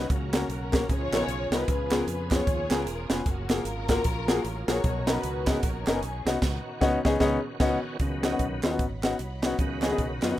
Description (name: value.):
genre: uptempo gospel.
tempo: 152 BPM.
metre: 4/4.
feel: swing 60% on 8ths.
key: unclear.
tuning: A4 = 440 Hz.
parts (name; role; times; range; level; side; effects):
dark symphonic string section; melody; 0.0-7.1 s; A#3 to C#5; -33 LUFS; left 1 dB; none.
warm upright piano; accompaniment; 0.0-10.4 s; B2 to B4; -28 LUFS; left 2 dB; none.
bright tonewheel organ; sustained chords; 0.0-10.4 s; D3 to C#5; -39 LUFS; right 2 dB; slow rotary speaker, chorus vibrato.
fingered electric bass; bass; 0.0-10.4 s; E1 to F#2; -34 LUFS; right 1 dB; none.
crisp fusion drum kit; drums; 0.1-10.3 s; crash cymbal, hi-hat, kick drum, snare drum; -28 LUFS; right 1 dB; none.
group handclap; percussion; 0.3-10.3 s; none; -40 LUFS; right 5 dB; none.
clear symphonic string section; sustained chords; 8.0-10.4 s; C#5 to B5; -45 LUFS; right 1 dB; none.
room: light reverb.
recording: rough home demo mix.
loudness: -24 LUFS.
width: side -13 dB against mid.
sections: 0.0-8.0 A section; 8.0-10.4 B section.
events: band accent 6.4-8.0; tonewheel organ solo 8.0-10.4.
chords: 0.1 F#/C#; 0.9 C#13; 1.7 C#7; 3.3 F#maj9; 4.8 Bmaj9; 6.4 C#9sus4.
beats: | 0.10 0.50 0.89 1.29 | 1.68 2.08 2.47 2.87 | 3.26 3.66 4.05 4.45 | 4.84 5.24 5.63 6.03 | 6.42 6.82 7.21 7.61 | 8.00 8.40 8.79 9.19 | 9.59 9.98 10.38.